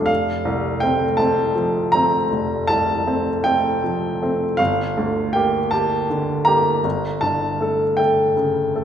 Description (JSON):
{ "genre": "classical, romantic nocturne for solo piano", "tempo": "53 BPM (dotted quarters)", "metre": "12/8", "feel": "rubato", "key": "unclear", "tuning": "A4 = 440 Hz", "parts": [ { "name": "clear baby grand piano", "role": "solo", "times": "0.0-8.8 s", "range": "F1 to Bb5", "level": "-17 LUFS", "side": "equal", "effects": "none" } ], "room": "wet concert hall reverb, RT60 1.9 s", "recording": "recorded in a church or concert hall", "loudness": "-17 LUFS", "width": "side -9 dB against mid", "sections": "0.0-8.8 A section", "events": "none", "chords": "0.1 F; 4.6 Gm; 6.8 A7/G", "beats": "| 0.09 1.20 2.33 3.45 | 4.59 5.73 6.84 7.99" }